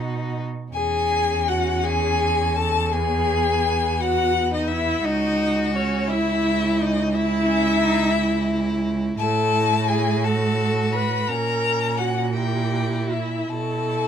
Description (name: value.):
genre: classical, slow romantic movement for string quartet.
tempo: 56 BPM (dotted quarters).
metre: 12/8.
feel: uneven beats, rubato.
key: E major.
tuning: A4 = 438 Hz.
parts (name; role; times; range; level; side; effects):
warm violin; melody; 0.0-14.1 s; C#5 to B5; -24 LUFS; left 6 dB; none.
rich violin; second line; 0.0-14.1 s; B3 to F#4; -29 LUFS; left 4 dB; none.
rich viola; accompaniment; 0.0-14.1 s; C#4 to B4; -25 LUFS; right 1 dB; none.
warm cello; bass; 0.0-14.1 s; C#2 to B2; -24 LUFS; right 4 dB; none.
room: light reverb.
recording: close, detailed microphones.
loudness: -19 LUFS.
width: side -8 dB against mid.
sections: 0.7-14.1 A section.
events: none.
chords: 0.0 B; 0.7 E; 5.0 C#m; 9.2 F#m7/A; 11.3 A#dim7; 13.5 E5/B.